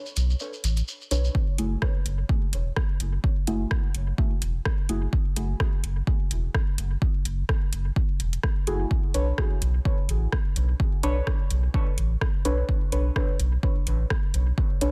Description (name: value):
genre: dub techno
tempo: 127 BPM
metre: 4/4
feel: swing 56% on 16ths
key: F# minor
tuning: A4 = 440 Hz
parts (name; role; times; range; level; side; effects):
- shekere; percussion; 0.1-1.3 s; none; -38 LUFS; equal; none
- warm sub bass; bass; 0.2-14.9 s; E1 to B1; -27 LUFS; equal; sidechain pumping
- deep house drum kit; drums; 0.2-14.9 s; hi-hat, rim click; -35 LUFS; equal; overdrive, dub echo
- deep mellow chord stab; stabs; 1.1-5.5, 8.7-14.9 s; A3 to C#5; -34 LUFS; equal; chorus, phaser, sidechain pumping, dub echo
- electronic kick drum; drums; 1.3-14.7 s; none; -28 LUFS; equal; overdrive
room: little or no reverb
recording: dense, heavily limited modern master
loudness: -25 LUFS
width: mono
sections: 0.0-1.3 A section; 1.3-14.9 A section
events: break 0.0-1.3; filter sweep on synth stab 0.0-1.3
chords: 0.0 Bm9; 1.3 F#m9; 8.9 Bm9